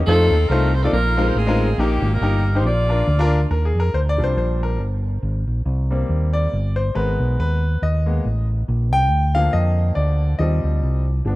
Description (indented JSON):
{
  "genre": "uptempo gospel",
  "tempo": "139 BPM",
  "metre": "4/4",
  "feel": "swing 56% on 8ths",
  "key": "Eb major",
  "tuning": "A4 = 439 Hz",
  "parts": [
    { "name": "edgy saxophone section", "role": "melody", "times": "0.1-3.5 s", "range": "Bb3 to D5", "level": "-22 LUFS", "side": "equal", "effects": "none" },
    { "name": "bright concert grand piano", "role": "accompaniment", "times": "0.1-11.4 s", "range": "Bb2 to G5", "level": "-23 LUFS", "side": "left 2 dB", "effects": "none" },
    { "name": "fingered electric bass", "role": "bass", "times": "0.1-11.4 s", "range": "G1 to F2", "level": "-18 LUFS", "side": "equal", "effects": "none" }
  ],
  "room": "light reverb, small room ambience",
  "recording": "rough home demo mix",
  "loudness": "-17 LUFS",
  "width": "side -18 dB against mid",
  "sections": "0.0-3.5 A section; 3.5-11.4 B section",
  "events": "grand piano solo 3.5-11.4",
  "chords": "0.1 F7; 0.9 Bb9sus4; 1.8 Eb; 2.7 Bb; 3.5 Ebmaj7 (rootless); 5.2 Abmaj7 (rootless); 7.0 Abmadd9; 8.7 Bb; 10.4 Eb6"
}